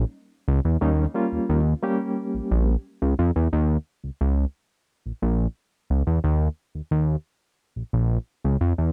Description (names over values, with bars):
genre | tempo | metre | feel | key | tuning
funk | 88 BPM | 4/4 | straight | Eb mixolydian | A4 = 437 Hz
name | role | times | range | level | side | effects
fat analog bass | bass | 0.0-8.9 s | Bb1 to F2 | -23 LUFS | equal | none
barky reed electric piano | stabs | 0.8-2.7 s | G3 to G4 | -28 LUFS | equal | overdrive, fast tremolo
room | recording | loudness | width
digital ambience | none | -24 LUFS | mono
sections
0.0-3.5 A section; 3.5-8.9 B section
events
none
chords
0.0 Eb9; 3.5 Eb5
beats
0.14 | 0.82 1.50 2.17 2.85 | 3.53 4.21 4.89 5.56 | 6.24 6.92 7.60 8.28